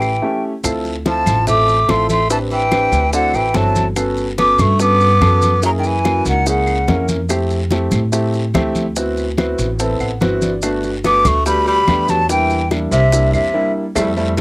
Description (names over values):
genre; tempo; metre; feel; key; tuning
Afro-Cuban jazz; 144 BPM; 4/4; straight; unclear; A4 = 439 Hz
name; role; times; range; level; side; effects
breathy mellow silver concert flute; melody; 0.0-7.1, 11.1-13.7 s; E5 to D6; -15 LUFS; equal; cassette tape
growling tenor saxophone; second line; 0.0-7.1, 11.1-13.7 s; C3 to B3; -21 LUFS; right 1 dB; cassette tape
warm grand piano; accompaniment; 0.0-14.4 s; G3 to F#5; -20 LUFS; equal; cassette tape
upright bass; bass; 0.0-14.4 s; G1 to A2; -19 LUFS; equal; none
bongos and cowbell; percussion; 0.0-14.4 s; none; -22 LUFS; left 3 dB; none
claves; percussion; 0.0-14.2 s; none; -30 LUFS; right 2 dB; none
congas; percussion; 0.0-14.4 s; none; -23 LUFS; equal; none
maracas; percussion; 0.0-14.4 s; none; -28 LUFS; right 2 dB; none
guiro; percussion; 0.6-14.4 s; none; -34 LUFS; left 2 dB; none
room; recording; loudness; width
light reverb; home recording on cassette; -13 LUFS; side -24 dB against mid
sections
0.6-14.0 A section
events
break 0.2-0.6, 13.5-14.0; grand piano fill 9.8-10.6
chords
0.0 A7; 0.6 Dm9; 2.3 Am11; 3.1 D9; 4.0 Gmaj9#11; 5.6 F#9; 7.3 Fmaj9; 9.0 D13; 10.6 Gmaj9; 12.3 C7